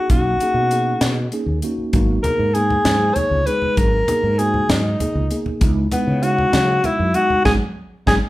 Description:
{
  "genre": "electric jazz fusion",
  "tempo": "65 BPM (dotted quarters)",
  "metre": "6/8",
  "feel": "straight",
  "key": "G# minor",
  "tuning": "A4 = 440 Hz",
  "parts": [
    { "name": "breathy alto saxophone", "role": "melody", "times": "0.0-8.1 s", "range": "B3 to C#5", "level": "-18 LUFS", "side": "left 1 dB", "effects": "none" },
    { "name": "mellow tine electric piano", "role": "accompaniment", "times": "0.0-8.2 s", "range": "G#3 to G#4", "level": "-24 LUFS", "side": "right 1 dB", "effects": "medium stereo tremolo" },
    { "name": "mellow fretless electric bass", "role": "bass", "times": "0.1-8.2 s", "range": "G#1 to C#3", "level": "-22 LUFS", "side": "equal", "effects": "none" },
    { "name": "crisp fusion drum kit", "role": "drums", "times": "0.1-8.2 s", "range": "hi-hat, kick drum, snare drum", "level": "-21 LUFS", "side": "equal", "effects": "none" },
    { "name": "congas", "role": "percussion", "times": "1.9-8.2 s", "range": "none", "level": "-26 LUFS", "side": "left 1 dB", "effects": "none" }
  ],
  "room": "moderate large studio reverb, RT60 0.8 s",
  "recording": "band playing live in one room",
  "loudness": "-16 LUFS",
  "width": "side -16 dB against mid",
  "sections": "0.0-8.3 A section",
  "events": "band accent 7.5-8.3",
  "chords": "0.1 Bmaj7; 1.9 G#m9; 5.6 C#m7; 7.5 G#m",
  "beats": "| 0.10 1.02 | 1.94 2.85 | 3.77 4.69 | 5.61 6.53 | 7.45"
}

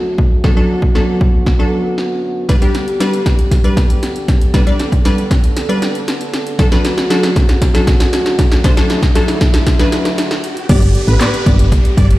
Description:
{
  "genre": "dance-pop",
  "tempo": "117 BPM",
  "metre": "4/4",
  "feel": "straight",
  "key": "G major",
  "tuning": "A4 = 436 Hz",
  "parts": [
    { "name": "wavetable chord stab", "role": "accompaniment", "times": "0.0-12.1 s", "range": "F#3 to D5", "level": "-19 LUFS", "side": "equal", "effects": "sidechain pumping" },
    { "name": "mellow French horn section", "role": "sustained chords", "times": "0.0-12.2 s", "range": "F#2 to A4", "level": "-21 LUFS", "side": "equal", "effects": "sidechain pumping" },
    { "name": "punchy analog drum machine", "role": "drums", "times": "0.2-12.2 s", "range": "crash cymbal, handclaps, hi-hat, kick drum, snare drum", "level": "-13 LUFS", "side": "equal", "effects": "none" },
    { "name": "riser and downlifter", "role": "sound effects", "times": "5.6-12.2 s", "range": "none", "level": "-29 LUFS", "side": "equal", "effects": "none" },
    { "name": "supersaw chords", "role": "melody", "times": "10.7-12.1 s", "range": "B4 to D5", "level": "-24 LUFS", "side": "equal", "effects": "sidechain pumping, tape echo" },
    { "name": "solid FM bass", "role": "bass", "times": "10.7-12.2 s", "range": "G1 to A1", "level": "-11 LUFS", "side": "equal", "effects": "sidechain pumping" }
  ],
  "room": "light reverb",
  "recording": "played on a big sound system in a bare room, stone room reverb",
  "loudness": "-11 LUFS",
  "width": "side -17 dB against mid",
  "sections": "0.0-10.7 A section; 10.7-12.2 B section",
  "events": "build-up 0.0-10.7; drum fill 0.0-10.7; drop 10.7-12.2",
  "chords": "0.0 D/F#; 2.5 G; 6.6 D/F#; 10.7 G",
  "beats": "| 0.44 0.95 1.47 1.98 | 2.49 3.00 3.52 4.03 | 4.54 5.05 5.57 6.08 | 6.59 7.11 7.62 8.13 | 8.64 9.16 9.67 10.18 | 10.70 11.21 11.72"
}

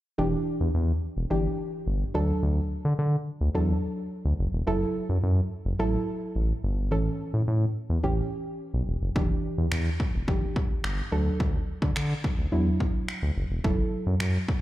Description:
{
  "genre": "dance-pop",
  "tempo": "107 BPM",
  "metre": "4/4",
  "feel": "straight",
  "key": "E dorian",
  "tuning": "A4 = 440 Hz",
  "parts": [
    { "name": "soft round pluck", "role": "accompaniment", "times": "0.2-14.6 s", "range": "E3 to A4", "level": "-30 LUFS", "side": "right 1 dB", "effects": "chorus, sidechain pumping, slapback echo" },
    { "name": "round analog bass", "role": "bass", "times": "0.2-14.4 s", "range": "E1 to D3", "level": "-25 LUFS", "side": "equal", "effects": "sidechain pumping" },
    { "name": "house drum kit", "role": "drums", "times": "9.2-14.6 s", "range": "finger snaps, kick drum", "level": "-28 LUFS", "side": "equal", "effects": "overdrive" }
  ],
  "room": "little or no reverb",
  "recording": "live gig heard through the venue's PA, club reverb",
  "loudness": "-25 LUFS",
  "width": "side -15 dB against mid",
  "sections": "0.2-14.6 A section",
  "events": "none",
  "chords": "0.2 Em7; 2.1 D; 4.7 F#m7; 6.9 A; 9.2 Em7; 11.1 D; 13.6 F#m7",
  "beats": "| 0.19 0.75 1.31 1.87 | 2.43 2.99 3.55 4.11 | 4.67 5.23 5.79 6.35 | 6.92 7.48 8.04 8.60 | 9.16 9.72 10.28 10.84 | 11.40 11.96 12.52 13.08 | 13.64 14.21"
}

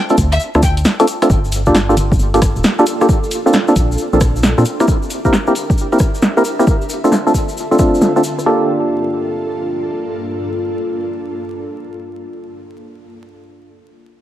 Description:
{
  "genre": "UK garage, two-step garage",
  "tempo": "134 BPM",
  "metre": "4/4",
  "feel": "swing 65% on 16ths",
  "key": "G dorian",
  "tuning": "A4 = 439 Hz",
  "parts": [
    { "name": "bright symphonic violin section", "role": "melody", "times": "0.0-0.7 s", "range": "E5 to G5", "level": "-23 LUFS", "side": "left 2 dB", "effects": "tape echo" },
    { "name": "percussive organ stab", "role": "stabs", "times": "0.1-12.7 s", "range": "A3 to Bb4", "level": "-15 LUFS", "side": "equal", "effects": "analog chorus, tape echo" },
    { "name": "punchy analog drum machine", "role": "drums", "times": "0.1-8.4 s", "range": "hi-hat, rim click, snare drum, woodblock", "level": "-16 LUFS", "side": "equal", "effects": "low-pass filter on hats, low-pass filter on snare, low-pass filter on perc" },
    { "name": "tube shaker", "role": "percussion", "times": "0.1-8.4 s", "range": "none", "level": "-29 LUFS", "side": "left 3 dB", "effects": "none" },
    { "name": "organ-like FM bass", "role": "bass", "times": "0.2-4.6 s", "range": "D1 to Bb2", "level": "-16 LUFS", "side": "equal", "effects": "none" },
    { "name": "electronic kick drum", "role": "drums", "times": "0.2-7.9 s", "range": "none", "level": "-15 LUFS", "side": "equal", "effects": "none" },
    { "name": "ethereal airy pad", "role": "sustained chords", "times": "2.1-12.7 s", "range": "G2 to E5", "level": "-24 LUFS", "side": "equal", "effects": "ensemble chorus, built-in reverb, tremolo, sidechain pumping" }
  ],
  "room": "light reverb",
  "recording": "vinyl crackle",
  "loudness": "-12 LUFS",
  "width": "side -12 dB against mid",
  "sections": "0.0-1.3 A section; 1.3-8.5 B section; 8.5-12.0 C section",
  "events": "filter sweep on drum 1.3-8.5",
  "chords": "0.0 Dm7; 1.3 Gm9; 3.1 Bbmaj9; 4.7 C7; 6.7 Dm7; 8.5 Gm9",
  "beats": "0.40 0.85 | 1.30 1.75 2.19 2.64 | 3.09 3.54 3.98 4.43 | 4.88 5.33 5.78 6.22 | 6.67 7.12 7.57 8.01 | 8.46 8.91 9.36 9.80 | 10.25 10.70 11.15 11.60"
}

